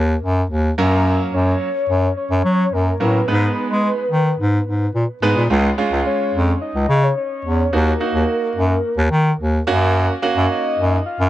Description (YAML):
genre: dance-pop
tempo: 108 BPM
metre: 4/4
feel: straight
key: F# major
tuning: A4 = 440 Hz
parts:
  - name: soft octave-layered synth lead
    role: melody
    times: 0.0-11.3 s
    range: A#4 to E#5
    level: -23 LUFS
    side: left 2 dB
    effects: chorus, phaser, ping-pong delay
  - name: clear bass clarinet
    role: bass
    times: 0.0-11.3 s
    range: C#2 to G#3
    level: -16 LUFS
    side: equal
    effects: none
  - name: clear concert grand piano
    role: accompaniment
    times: 0.8-11.0 s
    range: F#3 to B4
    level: -20 LUFS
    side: right 2 dB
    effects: none
room: light reverb, studio ambience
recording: worn, warbling old tape, cassette tape, warbly pitch drift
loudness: -16 LUFS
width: side -14 dB against mid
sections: 0.0-5.5 A section; 5.5-11.3 B section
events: none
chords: 0.0 D#m; 0.8 F#; 3.3 G#m; 5.5 C#; 7.7 D#m; 9.7 F#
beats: 0.50 | 1.06 1.61 2.17 2.73 | 3.28 3.84 4.39 4.95 | 5.50 6.06 6.62 7.17 | 7.73 8.28 8.84 9.39 | 9.95 10.50 11.06